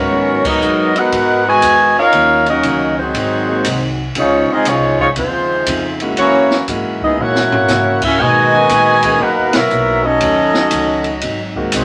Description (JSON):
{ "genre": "jazz, big band swing", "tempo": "119 BPM", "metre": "4/4", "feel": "swing 66% on 8ths", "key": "G# minor", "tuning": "A4 = 441 Hz", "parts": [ { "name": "mellow saxophone section", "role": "melody", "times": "0.0-11.8 s", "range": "G#3 to G#5", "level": "-16 LUFS", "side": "equal", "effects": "none" }, { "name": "warm trombone section", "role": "second line", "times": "0.0-11.8 s", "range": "B2 to A#4", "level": "-21 LUFS", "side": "equal", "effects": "none" }, { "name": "clear concert grand piano", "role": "accompaniment", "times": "0.0-11.8 s", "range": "G#2 to E#5", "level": "-26 LUFS", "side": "equal", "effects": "none" }, { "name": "upright bass", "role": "bass", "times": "0.0-11.8 s", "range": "G#1 to C#3", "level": "-28 LUFS", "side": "equal", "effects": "none" }, { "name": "hollow-body jazz guitar", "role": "accompaniment", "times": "0.1-11.8 s", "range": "F#2 to A#4", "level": "-29 LUFS", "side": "equal", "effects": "none" }, { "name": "open jazz drum kit", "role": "drums", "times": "0.4-11.8 s", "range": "crash cymbal, hi-hat, kick drum, ride cymbal, snare drum, toms", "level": "-24 LUFS", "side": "equal", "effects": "none" } ], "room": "wet small room reverb, RT60 0.5 s", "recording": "none", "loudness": "-14 LUFS", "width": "mono", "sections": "0.1-11.8 A section", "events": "band accent 0.4, 9.5; drum fill 7.2-7.7", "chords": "0.1 G#m9; 2.1 D#m7; 3.1 G#7; 4.2 C#maj9; 6.2 F#7; 8.2 Bmaj7; 10.2 D#m7b5; 11.2 G#7" }